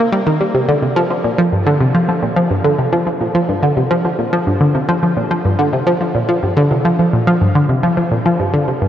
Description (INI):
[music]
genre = ambient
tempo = 107 BPM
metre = 4/4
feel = straight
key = G minor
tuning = A4 = 441 Hz
[part]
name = analog pluck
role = solo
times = 0.0-8.9 s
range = G2 to Bb3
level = -13 LUFS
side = equal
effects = chorus, phaser, tape echo
[sound]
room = wet huge ambient reverb, RT60 7.8 s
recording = worn, warbling old tape, cassette tape, warbly pitch drift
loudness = -13 LUFS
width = side -10 dB against mid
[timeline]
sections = 0.0-8.9 A section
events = none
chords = none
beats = 0.12 | 0.68 1.25 1.80 2.37 | 2.93 3.49 4.05 4.61 | 5.17 5.73 6.29 6.85 | 7.41 7.97 8.53